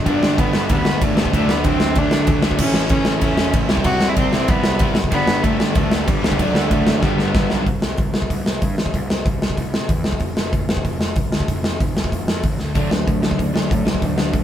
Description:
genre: punk rock.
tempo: 189 BPM.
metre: 4/4.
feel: straight.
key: G major.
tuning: A4 = 439 Hz.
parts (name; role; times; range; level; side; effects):
crunchy overdriven guitar; riff; 0.0-7.7, 12.8-14.4 s; G2 to E4; -25 LUFS; left 7 dB; none.
fuzz picked electric bass; bass; 0.0-14.4 s; E1 to C3; -25 LUFS; equal; overdrive.
warm cello; melody; 0.1-7.5 s; F#3 to F#4; -22 LUFS; equal; none.
distorted electric guitar; riff; 0.1-7.7, 12.7-14.4 s; G2 to D4; -25 LUFS; right 8 dB; distortion.
raw garage guitar; riff; 0.1-7.7 s; G2 to E4; -26 LUFS; equal; overdrive.
big rock drum kit; drums; 0.1-14.4 s; crash cymbal, hi-hat, kick drum, ride cymbal, snare drum; -19 LUFS; equal; none.
room: light reverb.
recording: band playing live in one room.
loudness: -16 LUFS.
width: side -10 dB against mid.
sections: 0.0-7.7 A section; 7.7-14.4 B section.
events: drum fill 7.0-7.7, 12.6.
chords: 0.1 G; 1.3 D; 2.6 A; 3.7 C; 5.1 G; 6.4 D; 7.0 G; 7.7 N.C.; 12.7 D.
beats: | 0.06 0.38 0.69 1.01 | 1.33 1.64 1.96 2.27 | 2.59 2.91 3.22 3.54 | 3.85 4.17 4.49 4.80 | 5.12 5.44 5.75 6.07 | 6.39 6.70 7.02 7.34 | 7.66 7.97 8.29 8.61 | 8.93 9.25 9.57 9.89 | 10.21 10.52 10.84 11.16 | 11.48 11.80 12.11 12.43 | 12.75 13.06 13.38 13.70 | 14.02 14.33.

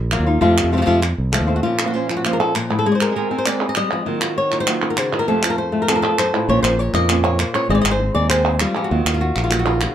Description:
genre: flamenco.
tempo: 198 BPM.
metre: 4/4.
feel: straight.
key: unclear.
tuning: A4 = 436 Hz.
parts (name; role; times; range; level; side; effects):
fingered electric bass; bass; 0.0-1.6, 6.5-9.9 s; Ab1 to F2; -20 LUFS; right 1 dB; none.
flamenco guitar; melody; 0.1-9.9 s; F2 to Eb5; -19 LUFS; left 2 dB; none.
palmas hand claps; percussion; 0.1-9.9 s; none; -22 LUFS; right 2 dB; none.
flamenco guitar; stabs; 0.3-9.9 s; C3 to C5; -24 LUFS; right 5 dB; none.
room: moderate small room reverb, RT60 0.5 s.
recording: none.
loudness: -16 LUFS.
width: side -10 dB against mid.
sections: 0.0-1.6 A section; 1.6-9.9 B section.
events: none.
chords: 0.4 F; 1.6 Bbmadd9; 2.8 Ab; 4.1 Ebmadd9; 5.3 F; 6.5 Bbmadd9; 7.7 Ab; 8.9 Ebmadd9.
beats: 0.12 | 0.42 0.72 1.03 1.33 | 1.64 1.94 2.24 2.55 | 2.85 3.15 3.46 3.76 | 4.06 4.37 4.67 4.97 | 5.28 5.58 5.88 6.18 | 6.49 6.79 7.09 7.39 | 7.70 8.00 8.30 8.61 | 8.91 9.21 9.51 9.81.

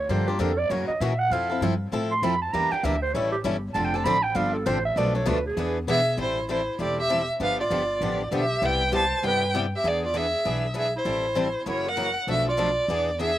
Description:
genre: acoustic string swing (jazz manouche).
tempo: 197 BPM.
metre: 4/4.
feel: swing 60% on 8ths.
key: A minor.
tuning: A4 = 441 Hz.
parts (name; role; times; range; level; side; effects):
growling clarinet; second line; 0.0-13.4 s; E4 to C6; -28 LUFS; right 3 dB; slapback echo.
upright bass; bass; 0.0-13.4 s; E1 to B2; -30 LUFS; left 1 dB; none.
picked steel-string acoustic guitar; accompaniment; 0.1-13.3 s; B2 to B4; -32 LUFS; right 5 dB; none.
picked swing-style acoustic guitar; accompaniment; 0.1-13.3 s; B2 to A4; -30 LUFS; left 6 dB; slapback echo.
warm violin; melody; 5.9-13.4 s; C5 to A5; -25 LUFS; equal; none.
room: little or no reverb.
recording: recorded outdoors, with no room sound.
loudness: -22 LUFS.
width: side -13 dB against mid.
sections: 0.0-6.2 A section; 6.2-13.4 B section.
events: clarinet solo 0.0-6.2.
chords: 0.1 Gm7; 0.7 F#7; 1.3 Fmaj7; 2.5 Em7b5; 3.1 A7; 3.7 Dm7; 5.0 Bm7b5; 5.6 E7; 6.2 Am7; 7.4 G7; 8.6 Cmaj7; 9.8 E7; 11.1 Am7; 11.7 F#7; 12.3 Bm7b5.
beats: | 0.10 0.40 0.71 1.01 | 1.31 1.62 1.92 2.23 | 2.53 2.84 3.14 3.44 | 3.75 4.05 4.36 4.66 | 4.97 5.27 5.58 5.88 | 6.18 6.49 6.79 7.10 | 7.40 7.71 8.01 8.32 | 8.62 8.93 9.23 9.54 | 9.84 10.15 10.45 10.76 | 11.06 11.37 11.67 11.97 | 12.28 12.58 12.89 13.19.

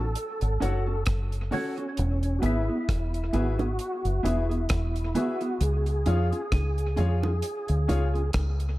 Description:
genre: roots reggae.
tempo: 66 BPM.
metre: 4/4.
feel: swing 56% on 16ths.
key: unclear.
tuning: A4 = 439 Hz.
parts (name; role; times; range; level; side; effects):
percussive tonewheel organ; melody; 0.0-8.3 s; C#4 to A4; -32 LUFS; equal; chorus vibrato, slow rotary speaker, dub echo.
mellow electric guitar; accompaniment; 0.0-8.2 s; B3 to A4; -34 LUFS; right 2 dB; dub echo.
deep dub fingered electric bass; bass; 0.0-8.8 s; E1 to E#2; -26 LUFS; equal; none.
deep reggae drum kit; drums; 0.2-8.8 s; hi-hat, kick drum, rim click; -31 LUFS; equal; dub echo.
clear concert grand piano; stabs; 0.4-8.1 s; E4 to F#5; -36 LUFS; left 4 dB; none.
bongos; percussion; 0.6-8.6 s; none; -35 LUFS; right 4 dB; none.
room: studio ambience.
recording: echo-heavy mix.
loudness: -24 LUFS.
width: side -17 dB against mid.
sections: 0.0-8.8 A section.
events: none.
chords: 0.0 F#m; 2.0 E; 5.6 C#.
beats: 0.16 1.07 | 1.98 2.89 3.80 4.71 | 5.61 6.52 7.43 8.34.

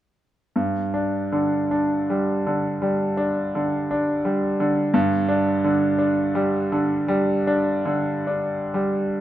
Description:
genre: classical, romantic nocturne for solo piano.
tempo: 40-59 BPM (dotted quarters).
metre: 12/8.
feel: rubato.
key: unclear.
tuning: A4 = 440 Hz.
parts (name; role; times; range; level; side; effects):
bright concert grand piano; solo; 0.6-9.2 s; G2 to D4; -20 LUFS; equal; none.
room: moderate large studio reverb, RT60 0.9 s.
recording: none.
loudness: -20 LUFS.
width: side -12 dB against mid.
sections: 0.6-9.2 A section.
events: none.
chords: 0.6 G5.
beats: | 0.55 1.72 2.83 3.91 | 4.95 5.99 7.09 8.28.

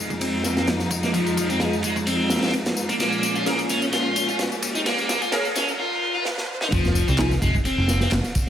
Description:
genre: breakbeat, breaks.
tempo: 129 BPM.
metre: 4/4.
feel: swing 54% on 16ths.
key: F minor.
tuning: A4 = 444 Hz.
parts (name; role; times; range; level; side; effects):
warm studio string section; sustained chords; 0.0-5.8 s; F2 to Eb4; -26 LUFS; equal; vintage 12-bit sampler grit, sidechain pumping, low-pass filter.
crunchy overdriven guitar; riff; 0.0-8.1 s; F3 to F4; -24 LUFS; equal; low-pass filter, tape echo.
riser and sub drop; sound effects; 2.6-8.5 s; none; -34 LUFS; equal; none.
crunchy breakbeat drum kit; drums; 0.1-8.5 s; kick drum, ride cymbal, snare drum; -26 LUFS; right 1 dB; high-pass filter on kick, high-pass filter on cymbals, high-pass filter on snare, high-pass filter on room.
electronic tambourine and handclaps; drums; 0.1-8.4 s; none; -32 LUFS; left 5 dB; overdrive.
filtered dub chord stab; stabs; 1.6-7.3 s; Db4 to Bb4; -30 LUFS; equal; phaser, ensemble chorus, vintage 12-bit sampler grit, tape echo.
picked electric bass; bass; 6.7-8.2 s; F1 to C2; -22 LUFS; equal; none.
room: light reverb, small room ambience.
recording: high-pass filter.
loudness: -20 LUFS.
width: side -10 dB against mid.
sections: 0.0-6.7 A section; 6.7-8.5 B section.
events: build-up 0.0-6.7; filter sweep on overdriven electric guitar 0.0-6.7; filter sweep 0.0-6.7; riser 2.6-6.7; drum fill 3.0-5.8, 6.3-6.7; break 5.8-6.7; drop 6.7-8.5; impact 6.7-8.5.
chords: 0.0 Fm7; 3.0 Bbm7; 6.7 Fm.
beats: 0.21 0.68 | 1.14 1.61 2.07 2.54 | 3.00 3.47 3.93 4.40 | 4.86 5.33 5.79 6.26 | 6.72 7.19 7.65 8.12.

